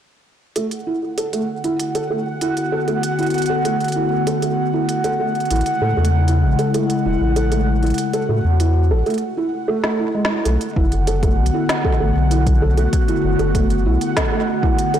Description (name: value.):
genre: IDM.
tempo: 97 BPM.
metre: 4/4.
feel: straight.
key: unclear.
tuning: A4 = 442 Hz.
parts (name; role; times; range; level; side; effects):
warbly tape-like pad; sustained chords; 1.4-15.0 s; C#3 to F#4; -22 LUFS; left 2 dB; chorus, built-in reverb.
felt-muted upright piano; arpeggios; 0.6-15.0 s; G#3 to A4; -22 LUFS; right 2 dB; low-pass filter, tape echo.
organic electronic drum kit; drums; 0.6-15.0 s; hi-hat, snare drum; -26 LUFS; equal; digital delay.
bubbling stepped-filter texture; texture; 0.8-15.0 s; F#5; -26 LUFS; right 3 dB; chorus, built-in reverb.
warm sub bass; bass; 5.5-14.0 s; E1 to A2; -17 LUFS; equal; none.
electronic kick drum; drums; 10.8-14.8 s; none; -19 LUFS; equal; none.
room: moderate lush hall reverb, RT60 1.7 s.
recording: blown-out, overdriven recording, overdrive.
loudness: -16 LUFS.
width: side -10 dB against mid.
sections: 0.6-10.5 A section; 10.5-15.0 B section.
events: break 9.2-10.5; drum fill 9.8-10.5.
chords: 0.6 Bm7; 5.5 Amaj7; 10.5 Bm7.